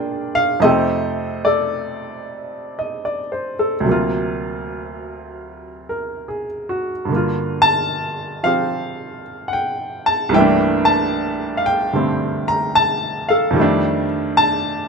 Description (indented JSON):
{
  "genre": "solo jazz",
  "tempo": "74 BPM",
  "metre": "4/4",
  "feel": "swing 66% on 8ths",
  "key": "F mixolydian",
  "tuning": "A4 = 440 Hz",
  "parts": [
    { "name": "bright upright piano", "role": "solo", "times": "0.0-14.9 s", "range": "C2 to Bb5", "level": "-17 LUFS", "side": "equal", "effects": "none" }
  ],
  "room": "light reverb",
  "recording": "none",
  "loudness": "-16 LUFS",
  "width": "side -4 dB against mid",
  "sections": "0.0-14.9 A section",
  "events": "none",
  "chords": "0.0 Bb13; 0.6 F13; 3.9 D7alt; 7.1 Gm7; 10.3 C13; 13.6 F13"
}